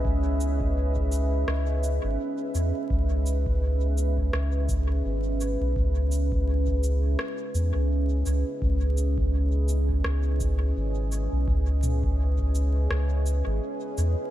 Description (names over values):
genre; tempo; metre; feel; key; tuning
ambient dub; 84 BPM; 4/4; swing 56% on 16ths; C# minor; A4 = 441 Hz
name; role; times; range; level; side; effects
deep dark ambient pad; sustained chords; 0.0-14.3 s; C#4 to E5; -31 LUFS; right 1 dB; chorus, built-in reverb
soft dub sub bass; bass; 0.0-14.2 s; G#1 to E2; -24 LUFS; equal; none
electronic kick drum; drums; 0.0-12.5 s; none; -30 LUFS; equal; none
organic electronic drum kit; drums; 0.4-14.1 s; cabasa, rim click, toms; -36 LUFS; equal; dub echo
room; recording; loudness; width
digital ambience; vinyl crackle, faint mains hum; -23 LUFS; side -13 dB against mid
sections
0.0-14.3 A section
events
none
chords
0.0 C#m7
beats
| 0.05 0.76 1.48 2.19 | 2.91 3.62 4.33 5.05 | 5.76 6.48 7.19 7.91 | 8.62 9.34 10.05 10.76 | 11.48 12.19 12.91 13.62